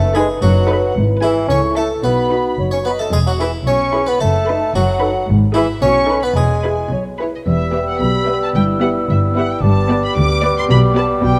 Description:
cinematic, playful, whimsical film cue; 111 BPM; 2/4; straight; E major, E minor from 7.5 s; A4 = 439 Hz
harpsichord; melody; 0.0-6.9 s; E4 to C#5; -26 LUFS; equal
clear bassoon; accompaniment; 0.0-11.4 s; E3 to C#4; -22 LUFS; equal
mellow French horn section; sustained chords; 0.0-11.4 s; B3 to B4; -26 LUFS; equal
dark chamber cello section; bass; 0.0-11.4 s; D2 to C#3; -22 LUFS; equal
warm chamber double bass section; bass; 0.0-11.4 s; E1 to D2; -22 LUFS; equal
dark symphonic violin section; melody; 0.1-11.4 s; C#5 to D6; -30 LUFS; equal
mellow hollow concert flute; second line; 0.1-11.4 s; E5 to E6; -26 LUFS; equal
warm chamber viola section; accompaniment; 0.1-11.2 s; B3 to A4; -26 LUFS; equal
warm chamber violin section; second line; 0.2-11.2 s; A4 to B5; -29 LUFS; equal
dark clarinet; second line; 2.6-3.1, 6.9-11.4 s; B4 to D#5; -29 LUFS; equal
triangle; percussion; 3.1-4.2 s; -36 LUFS; equal
moderate scoring stage reverb, RT60 1.9 s; -16 LUFS; mono
0.0-7.5 A section; 7.5-11.4 B section
0.0 B7/F#; 1.0 E/G#; 1.5 A/C#; 2.0 B; 3.1 E; 4.2 B7/F#; 5.3 E/G#; 5.8 B7; 6.4 E; 7.5 Em; 8.5 Em/G; 9.6 G; 10.7 G/B

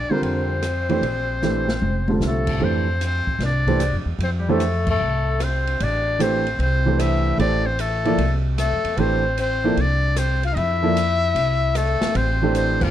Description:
modal jazz; 151 BPM; 4/4; swing 67% on 8ths; F major; A4 = 440 Hz
trumpet with metal mute; melody; 0.0-12.9 s; F4 to F5; -26 LUFS; equal
breathy tenor saxophone; second line; 0.0-12.9 s; F3 to F4; -26 LUFS; left 6 dB
upright bass; bass; 0.0-12.9 s; F1 to F2; -23 LUFS; equal
clear grand piano; accompaniment; 0.1-12.9 s; D3 to D5; -22 LUFS; right 2 dB
open jazz drum kit; drums; 0.2-12.9 s; crash cymbal, hi-hat, kick drum, ride cymbal, rim click, snare drum, toms; -30 LUFS; equal
light reverb; dark, warm production; -18 LUFS; side -11 dB against mid
0.0-2.6 A section; 2.6-12.9 B section
drum fill 1.4-2.2; band accent 4.8, 12.7
0.0 Bbmaj9; 2.6 Fmaj9

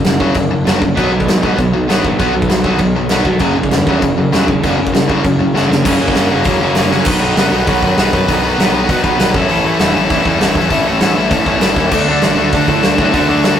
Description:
punk rock; 197 BPM; 4/4; straight; A4 = 439 Hz
distorted electric guitar; riff; 0.0-13.6 s; F#2 to D4; -18 LUFS; right 3 dB; distortion
tight distorted guitar; riff; 0.0-13.6 s; F#2 to B4; -16 LUFS; left 5 dB; distortion
fuzz picked electric bass; bass; 0.0-13.6 s; E1 to B2; -19 LUFS; equal; overdrive
big rock drum kit; drums; 0.0-13.5 s; crash cymbal, hi-hat, kick drum, snare drum; -16 LUFS; equal
crunchy overdriven guitar; riff; 1.0-7.1, 11.9-13.6 s; F#2 to D4; -20 LUFS; right 1 dB
light reverb; rough rehearsal-room recording, tube saturation; -11 LUFS; side -9 dB against mid
0.0-5.9 A section; 5.9-7.1 B section; 7.1-13.6 C section
drum fill 5.5-5.9, 6.9
0.0 F#5; 1.0 B5; 3.4 F#5; 5.9 F#; 7.1 B; 9.4 A; 11.9 D

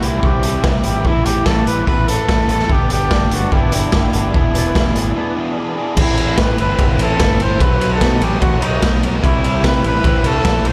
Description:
indie rock; 147 BPM; 4/4; straight; E minor; A4 = 442 Hz
clear trumpet; melody; 0.0-10.7 s; D#4 to C5; -23 LUFS; equal; diffuse ambient delay
crunchy overdriven guitar; riff; 0.0-10.7 s; E2 to G#4; -26 LUFS; equal; analog chorus
overdriven electric guitar; riff; 0.0-10.7 s; E3 to B4; -28 LUFS; equal; ensemble chorus
growling fingered electric bass; bass; 0.0-10.7 s; E1 to C3; -22 LUFS; equal; overdrive
raw garage drum kit; drums; 0.0-10.7 s; crash cymbal, hi-hat, kick drum, ride cymbal, snare drum; -19 LUFS; equal
lush unison pad; sustained chords; 6.0-10.7 s; C4 to E6; -35 LUFS; equal
moderate huge ambient reverb, RT60 4.4 s; dreamy mix soaked in reverb; -16 LUFS; mono
0.0-6.0 A section; 6.0-10.7 B section
break 5.2-6.0
0.0 C; 1.1 Asus2; 2.7 G; 4.3 E7; 6.0 Amadd9; 7.6 B; 9.2 C

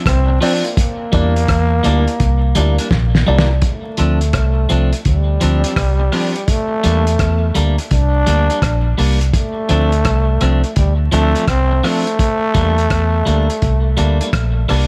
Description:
roots reggae; 84 BPM; 4/4; swing 65% on 16ths; D minor; A4 = 440 Hz
clean electric guitar; accompaniment; 0.0-14.9 s; F3 to D4; -24 LUFS; equal; dub echo
growling trombone; melody; 0.1-14.7 s; G3 to D4; -23 LUFS; equal; dub echo
vintage muted fingered electric bass; bass; 0.1-14.9 s; Bb1 to E2; -17 LUFS; equal
cloth-damped thuddy drum kit; drums; 0.1-14.9 s; hi-hat, kick drum, rim click, snare drum; -21 LUFS; equal
dark upright piano; stabs; 0.4-3.5 s; E4 to D5; -25 LUFS; equal
small room ambience; vinyl crackle; -15 LUFS; mono
0.0-3.6 A section; 3.6-14.9 B section
drum fill 2.9-3.6
0.0 Dm7; 0.8 Em7b5; 3.6 Dm7; 6.5 Em7b5; 9.3 Dm7; 12.2 Em7b5

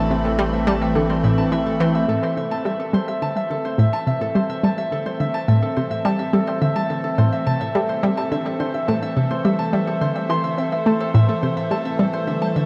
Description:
ambient, sequencer-driven space music; 106 BPM; 4/4; straight; A minor; A4 = 443 Hz
evolving wavetable pad; sustained chords; 0.0-12.7 s; E3 to B5; -28 LUFS; equal; chorus, built-in reverb
concert harp; arpeggios; 0.0-12.7 s; A4 to C6; -27 LUFS; equal; analog delay
round analog bass; bass; 0.0-2.1 s; A1; -31 LUFS; equal
analog pluck; riff; 0.1-12.7 s; A2 to C4; -23 LUFS; equal; chorus, analog delay
wet huge ambient reverb, RT60 8.0 s; -21 LUFS; mono
0.0-2.1 A section; 2.1-12.7 B section
fade-in on ambient pad 2.1-12.7
0.0 Am

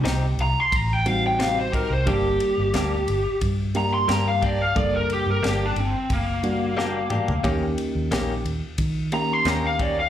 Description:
straight-eighth soul blues; 89 BPM; 4/4; straight; G harmonic minor; A4 = 440 Hz
reed electric piano; accompaniment; 0.0-9.9 s; G3 to A4; -29 LUFS; right 2 dB; spring reverb, slapback echo
direct-recorded clean electric guitar; stabs; 0.0-10.0 s; C3 to G4; -29 LUFS; left 4 dB; slapback echo
vintage muted fingered electric bass; bass; 0.0-10.1 s; F#1 to Eb3; -26 LUFS; equal
tight funk drum kit; drums; 0.1-10.0 s; kick drum, ride cymbal, snare drum, toms; -30 LUFS; equal
lead guitar through a small cranked amp; melody; 0.4-10.1 s; Bb3 to C6; -23 LUFS; equal; overdrive, slapback echo
light reverb; live gig heard through the venue's PA, club reverb; -20 LUFS; side -10 dB against mid
0.0-10.1 A section
lead electric guitar solo 0.0-10.1; drum fill 6.8-7.4
0.0 Cm; 2.1 Gm; 7.4 Eb7

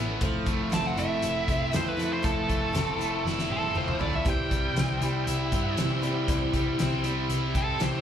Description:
folk rock and heartland rock; 119 BPM; 4/4; straight; A4 = 440 Hz
picked steel-string acoustic guitar; accompaniment; 0.0-8.0 s; C3 to E4; -34 LUFS; left 3 dB; slapback echo
tonewheel organ; sustained chords; 0.0-8.0 s; C#4 to C5; -38 LUFS; right 2 dB; overdrive, chorus vibrato, slow rotary speaker
crunchy overdriven guitar; riff; 0.0-8.0 s; C3 to E4; -31 LUFS; right 1 dB
hollow-body short-scale picked electric bass; bass; 0.0-8.0 s; F1 to C3; -31 LUFS; equal
loose indie drum kit; drums; 0.2-7.9 s; hi-hat, kick drum, snare drum, toms; -31 LUFS; equal
nasal lead guitar with a parked wah; melody; 0.7-8.0 s; A4 to A5; -32 LUFS; right 1 dB; overdrive, slapback echo, analog delay
light reverb; live gig heard through the venue's PA, club reverb; -24 LUFS; side -9 dB against mid
0.0-8.0 A section
lead electric guitar solo 0.0-8.0; drum fill 3.3-4.3
0.2 Fmaj7; 4.3 C

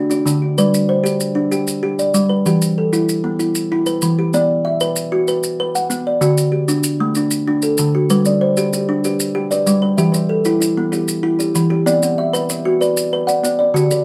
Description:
southern african traditional, mbira-style interlocking cycle; 128 BPM (dotted quarters); 12/8; straight; G major; A4 = 441 Hz
kalimba; arpeggios; 0.0-14.0 s; D3 to F#5; -18 LUFS; equal
kalimba; arpeggios; 0.0-0.9, 8.3-14.0 s; D3 to F#5; -25 LUFS; equal
maracas; percussion; 0.1-14.0 s; -28 LUFS; equal
light reverb; -17 LUFS; mono
0.6-14.0 A section
0.0 D; 0.6 G; 2.5 Em; 4.3 Bm; 6.2 D; 8.1 G; 10.0 Em; 11.9 Bm

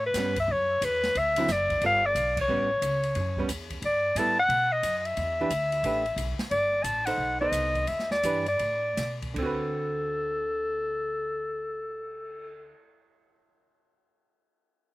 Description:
jazz, small-group swing and bop; 152-179 BPM; 4/4; swing 65% on 8ths; D mixolydian; A4 = 440 Hz
bright clarinet; melody; 0.0-12.7 s; A4 to A5; -26 LUFS; left 1 dB; slapback echo
upright bass; bass; 0.0-12.7 s; F#1 to B2; -35 LUFS; equal
open jazz drum kit; drums; 0.1-12.4 s; crash cymbal, cymbal swell, hi-hat, kick drum, ride cymbal, snare drum; -37 LUFS; equal
archtop guitar, miked and amplified; accompaniment; 0.2-12.8 s; D3 to C5; -33 LUFS; right 3 dB
little or no reverb; recorded outdoors, with no room sound; -25 LUFS; side -18 dB against mid
0.0-3.8 A section; 3.8-9.4 B section; 9.4-12.5 C section
band accent 2.3; slowing down 6.5-9.4
0.0 A9 (rootless); 1.2 D9; 1.8 G9; 2.5 A9; 3.8 G69; 4.5 B5; 5.2 Em7; 5.8 A9sus4; 6.5 Gsus2; 7.2 B7b9; 7.9 Em7; 8.6 Asus24; 9.4 D6

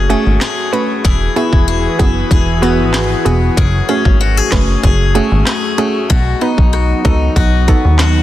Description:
dancehall; 95 BPM; 4/4; straight; F# dorian; A4 = 441 Hz
airy breathy pad; sustained chords; 0.0-8.2 s; E3 to B4; -20 LUFS; left 1 dB; chorus, sidechain pumping
picked swing-style acoustic guitar; arpeggios; 0.0-8.2 s; F#2 to G#4; -19 LUFS; left 7 dB
plucky analog bass; bass; 0.0-8.2 s; E1 to D#2; -14 LUFS; equal
soft round pluck; accompaniment; 0.1-7.8 s; A3 to B4; -18 LUFS; right 3 dB; chorus, sidechain pumping
island pop drum kit; drums; 0.4-8.2 s; handclaps, kick drum, rim click, snare drum; -14 LUFS; equal; overdrive, vintage 12-bit sampler grit
light reverb, digital ambience; dense, heavily limited modern master; -11 LUFS; side -14 dB against mid
0.0-8.2 A section
0.0 F#madd9; 1.0 Eadd9; 3.6 F#madd9; 6.1 B

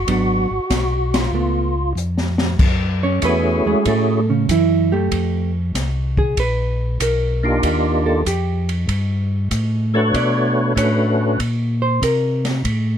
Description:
soul jazz organ trio; 95 BPM; 4/4; swing 68% on 8ths; A4 = 441 Hz
percussive tonewheel organ; melody; 0.0-11.4 s; A3 to C#5; -19 LUFS; equal; overdrive, chorus vibrato, slow rotary speaker
mellow tonewheel organ; bass; 0.0-13.0 s; G#1 to B#2; -20 LUFS; equal; slow rotary speaker
hollow-body jazz guitar; accompaniment; 0.1-12.4 s; C#3 to D5; -20 LUFS; right 3 dB
open jazz drum kit; drums; 0.1-12.8 s; crash cymbal, hi-hat, kick drum, ride cymbal, snare drum; -23 LUFS; left 1 dB
light reverb; dark, warm production; -16 LUFS; side -9 dB against mid
0.0-2.6 A section; 2.6-13.0 B section
band accent 1.0-1.3; drum fill 2.0-2.6; hollow-body jazz guitar solo 2.6-13.0
0.1 G#m7b5; 1.3 C#aug7; 2.6 F#m7; 5.1 F5; 6.4 A#; 7.6 D#maj9; 10.1 Bm7; 11.4 A#sus2

